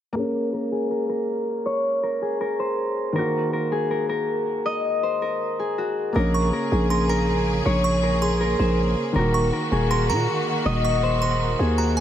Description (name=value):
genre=hip hop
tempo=160 BPM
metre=4/4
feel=half-time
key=Bb minor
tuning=A4 = 440 Hz
part: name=felt-muted upright piano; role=accompaniment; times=0.1-12.0 s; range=Eb3 to Ab4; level=-30 LUFS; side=left 2 dB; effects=low-pass filter
part: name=concert harp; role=melody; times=0.2-12.0 s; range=Gb4 to Eb5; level=-24 LUFS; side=left 1 dB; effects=low-pass filter, digital delay
part: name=rich symphonic string section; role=sustained chords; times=6.2-12.0 s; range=Db3 to Ab4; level=-28 LUFS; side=equal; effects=none
part: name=growling 808-style bass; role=bass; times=6.2-12.0 s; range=Eb1 to Bb2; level=-22 LUFS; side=equal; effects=none
part: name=delicate synth tine bell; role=second line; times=6.3-12.0 s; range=Ab5 to Db6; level=-30 LUFS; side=right 6 dB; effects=chorus, digital delay
room=light reverb, small room ambience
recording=none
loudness=-20 LUFS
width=side -10 dB against mid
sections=0.2-6.2 A section; 6.2-12.0 B section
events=filter sweep 0.2-6.2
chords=0.2 Bbm7; 3.2 Ebm; 6.2 Bbm7; 9.2 Ebm